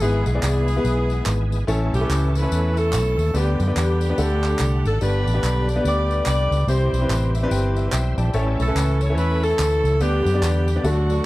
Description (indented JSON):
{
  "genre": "uptempo gospel",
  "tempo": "144 BPM",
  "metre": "4/4",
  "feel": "swing 61% on 8ths",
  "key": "G major",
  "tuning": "A4 = 439 Hz",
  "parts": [
    { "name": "bright saxophone section", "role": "melody", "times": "0.0-11.3 s", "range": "A3 to D5", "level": "-24 LUFS", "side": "equal", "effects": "tape echo" },
    { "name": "clear baby grand piano", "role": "accompaniment", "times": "0.0-11.3 s", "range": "G2 to A5", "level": "-25 LUFS", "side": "left 2 dB", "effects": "none" },
    { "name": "bright tonewheel organ", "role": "sustained chords", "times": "0.0-11.3 s", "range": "D3 to F#5", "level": "-30 LUFS", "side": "right 1 dB", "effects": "overdrive, chorus vibrato, fast rotary speaker" },
    { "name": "vintage muted fingered electric bass", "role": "bass", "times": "0.0-11.2 s", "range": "G1 to F#2", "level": "-20 LUFS", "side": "equal", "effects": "none" },
    { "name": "tambourine and handclaps", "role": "percussion", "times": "0.0-11.2 s", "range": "none", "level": "-32 LUFS", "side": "right 1 dB", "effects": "none" }
  ],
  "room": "studio ambience",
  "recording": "dry, close 1970s-style studio recording",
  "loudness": "-18 LUFS",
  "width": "side -18 dB against mid",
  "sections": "0.0-11.3 A section",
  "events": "grand piano fill 7.1-8.3",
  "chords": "0.0 E/G#; 1.7 A; 3.3 G/D; 4.2 D; 5.0 G; 6.7 C; 8.3 A; 10.0 G/D",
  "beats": "| 0.01 0.43 0.85 1.26 | 1.68 2.10 2.51 2.93 | 3.35 3.76 4.18 4.60 | 5.01 5.43 5.84 6.26 | 6.68 7.09 7.51 7.93 | 8.34 8.76 9.17 9.59 | 10.01 10.42 10.84 11.26"
}